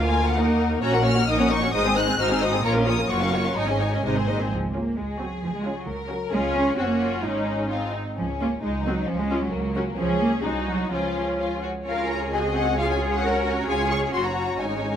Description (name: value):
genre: quick classical-period movement for string orchestra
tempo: 132 BPM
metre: 2/4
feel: rubato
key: Db major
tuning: A4 = 438 Hz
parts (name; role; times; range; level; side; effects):
- rich symphonic violin section; second line; 0.0-15.0 s; Bb3 to Gb5; -29 LUFS; left 3 dB; none
- rich symphonic viola section; accompaniment; 0.0-15.0 s; Ab3 to Bb4; -26 LUFS; equal; none
- rich symphonic cello section; bass; 0.0-15.0 s; D2 to Bb4; -27 LUFS; right 2 dB; none
- rich symphonic double bass section; bass; 0.0-15.0 s; Gb1 to D#2; -28 LUFS; right 2 dB; none
- warm symphonic violin section; melody; 0.1-15.0 s; Ab4 to Gb6; -29 LUFS; left 4 dB; none
room: light reverb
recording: close, detailed microphones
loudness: -21 LUFS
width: side -9 dB against mid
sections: 0.0-4.5 A section; 4.5-11.9 B section; 11.9-15.0 B section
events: none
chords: 0.4 D#m; 0.8 Gb/Bb; 1.3 Ebm7/Bb; 1.7 Ab; 2.2 Ab7; 2.6 Bbm; 3.1 Gbmaj7; 3.6 Absus4; 4.0 Ab; 4.5 Db; 5.0 Ab7/Db; 5.4 Db; 5.9 Gb/Db; 6.3 Db; 6.8 Gb; 7.2 Absus4; 7.7 Ab; 8.2 Db; 8.6 Ab7/Db; 9.1 Db; 9.5 Gb/Db; 10.0 Db; 10.4 Ab7/C; 10.9 Db; 12.3 Ab7/Db; 12.8 Db; 13.2 Gb/Db; 13.7 Db; 14.1 Gb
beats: 0.38 | 0.83 1.28 | 1.73 2.19 | 2.64 3.10 | 3.57 4.05 | 4.52 4.98 | 5.43 5.88 | 6.33 6.78 | 7.24 7.71 | 8.18 8.63 | 9.08 9.53 | 9.98 10.44 | 10.92 11.40 | 11.87 12.34 | 12.79 13.24 | 13.68 14.13 | 14.59